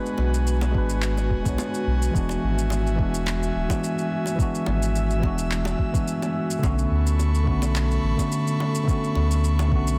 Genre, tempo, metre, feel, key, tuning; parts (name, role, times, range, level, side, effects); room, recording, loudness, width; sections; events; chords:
sunset chillout; 107 BPM; 4/4; swing 53% on 16ths; A4 = 442 Hz
tine electric piano; accompaniment; 0.0-10.0 s; D3 to C#5; -28 LUFS; equal; low-pass filter, delay
airy breathy pad; sustained chords; 0.0-10.0 s; F#4 to E6; -33 LUFS; equal; chorus
electronic shaker and handclaps; drums; 0.1-10.0 s; -36 LUFS; equal
warm sub bass; bass; 0.2-10.0 s; D1 to D2; -25 LUFS; equal
bongos; percussion; 0.2-9.7 s; -39 LUFS; equal
electronic kick drum; drums; 0.7-9.8 s; -27 LUFS; equal
light reverb, digital ambience; dense, heavily limited modern master; -23 LUFS; mono
0.0-10.0 A section
filter sweep on tine electric piano 0.0-10.0
0.0 G#m7b5; 2.1 E9; 6.6 Bm9